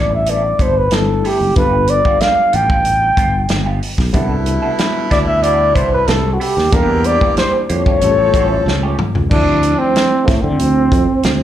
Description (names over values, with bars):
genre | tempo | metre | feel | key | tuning
lush 1970s-style soul | 93 BPM | 4/4 | straight | D minor | A4 = 440 Hz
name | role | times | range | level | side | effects
breathy flugelhorn | melody | 0.0-11.4 s | G#3 to G5 | -15 LUFS | equal | plate reverb, slapback echo
overdriven reed electric piano | accompaniment | 0.0-11.4 s | E3 to Bb4 | -24 LUFS | left 4 dB | fast tremolo, plate reverb, slapback echo
electric guitar through a small old amp | riff | 0.0-9.2 s | A3 to A4 | -26 LUFS | right 5 dB | wah, slapback echo
sustaining fretless electric bass | bass | 0.0-11.4 s | F#1 to D3 | -18 LUFS | equal | none
warm soul drum kit | drums | 0.3-11.4 s | crash cymbal, hi-hat, kick drum, snare drum, toms | -18 LUFS | equal | none
warm horn section | stabs | 4.1-9.0 s | B2 to A4 | -23 LUFS | right 3 dB | plate reverb, slapback echo
room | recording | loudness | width
light reverb | live gig heard through the venue's PA, club reverb | -12 LUFS | side -11 dB against mid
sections
0.0-9.3 A section; 9.3-11.4 B section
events
drum fill 8.7-9.3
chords
0.0 G69; 1.6 G7; 4.2 Cmaj13; 6.7 Em7b5; 8.0 Aaug7; 9.3 Dm9